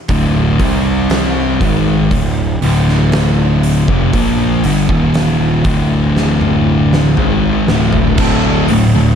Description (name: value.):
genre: stoner and doom metal.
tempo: 59 BPM.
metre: 4/4.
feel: straight.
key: unclear.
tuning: A4 = 440 Hz.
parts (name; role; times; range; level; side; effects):
thick fuzz guitar; riff; 0.1-9.2 s; D2 to C4; -15 LUFS; left 8 dB; distortion.
thick fuzz guitar; riff; 0.1-9.2 s; D2 to C4; -16 LUFS; right 9 dB; distortion.
fuzz picked electric bass; bass; 0.1-9.2 s; D1 to C2; -18 LUFS; equal; overdrive.
oversized low-tuned drum kit; drums; 0.1-8.9 s; crash cymbal, hi-hat, kick drum, snare drum, toms; -18 LUFS; equal; none.
distorted electric guitar; riff; 8.2-9.2 s; D2 to D3; -18 LUFS; right 3 dB; overdrive.
room: light reverb.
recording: dark, warm production.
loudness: -10 LUFS.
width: side -8 dB against mid.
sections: 0.0-8.2 A section.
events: drum fill 6.2-8.2.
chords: 0.1 D5; 0.6 C5; 1.6 Dm; 8.2 D5.